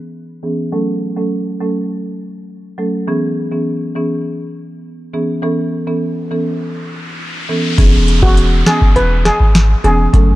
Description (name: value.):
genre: dancehall.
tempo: 102 BPM.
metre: 4/4.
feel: straight.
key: E major.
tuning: A4 = 443 Hz.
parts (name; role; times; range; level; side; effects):
marimba with medium mallets; accompaniment; 0.4-10.3 s; E3 to A4; -18 LUFS; right 1 dB; low-pass filter.
riser and downlifter; sound effects; 6.4-10.4 s; none; -24 LUFS; equal; none.
punchy sub bass; bass; 7.8-10.4 s; E1 to G#1; -13 LUFS; equal; none.
booming analog drum machine; drums; 7.8-10.3 s; hi-hat, kick drum, snare drum; -11 LUFS; equal; overdrive.
steel pan; melody; 8.2-9.9 s; F#4 to B4; -16 LUFS; equal; none.
room: little or no reverb.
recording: dark, warm production.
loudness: -13 LUFS.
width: side -17 dB against mid.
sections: 0.0-7.8 A section; 7.8-10.4 B section.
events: filter sweep on marimba 0.0-7.8; riser 6.4-7.8.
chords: 0.0 E6; 0.7 F#m; 3.1 E6; 5.4 Aadd9; 7.8 E6.